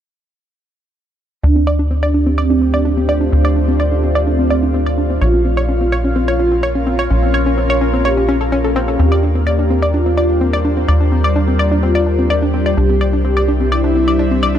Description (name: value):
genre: techno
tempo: 127 BPM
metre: 4/4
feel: straight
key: D minor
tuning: A4 = 440 Hz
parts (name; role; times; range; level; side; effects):
- mellow synth brass; melody; 1.4-14.6 s; C4 to G4; -20 LUFS; right 1 dB; chorus, tape echo
- deep dark ambient pad; sustained chords; 2.4-14.6 s; G3 to D5; -22 LUFS; left 1 dB; chorus, built-in reverb
- analog pluck; arpeggios; 1.4-14.6 s; C4 to D5; -19 LUFS; left 1 dB; chorus, ping-pong delay
- tight sequencer bass; bass; 1.4-14.6 s; Bb1 to Eb2; -16 LUFS; equal; none
- airy breathy pad; texture; 1.9-14.6 s; D4 to F5; -24 LUFS; equal; chorus
room: light reverb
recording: none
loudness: -12 LUFS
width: side -10 dB against mid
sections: 1.4-14.6 A section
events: filter sweep on synth arpeggio sound 1.4-14.6; filter sweep on analog polysynth 1.4-14.6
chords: 1.4 Dm; 5.2 Bbm; 9.0 Eb; 12.8 C